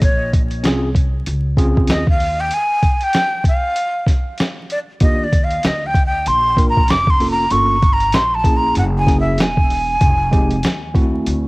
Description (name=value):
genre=hip hop, jazz-hop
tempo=96 BPM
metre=4/4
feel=swing 60% on 16ths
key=unclear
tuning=A4 = 440 Hz
part: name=breathy jazz flute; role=melody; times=0.0-11.0 s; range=Db5 to D6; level=-18 LUFS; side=equal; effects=cassette tape, analog delay
part: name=upright bass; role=bass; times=0.0-11.5 s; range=Fb1 to Eb2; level=-22 LUFS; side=equal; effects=tube saturation
part: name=dusty soul sampler-style drum kit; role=drums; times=0.0-11.4 s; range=hi-hat, kick drum, snare drum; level=-16 LUFS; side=equal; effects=cassette tape
part: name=tine electric piano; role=accompaniment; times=0.6-11.5 s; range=Ab3 to Bb4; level=-21 LUFS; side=equal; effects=medium stereo tremolo, cassette tape
room=little or no reverb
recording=home recording on cassette, vinyl crackle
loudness=-14 LUFS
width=side -24 dB against mid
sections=0.0-11.5 A section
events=flute solo 0.0-11.5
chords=0.0 Bbm7; 2.5 N.C.; 5.0 Ebmaj7(no3); 7.5 Gm7b5; 8.8 Gb9; 10.0 Fm7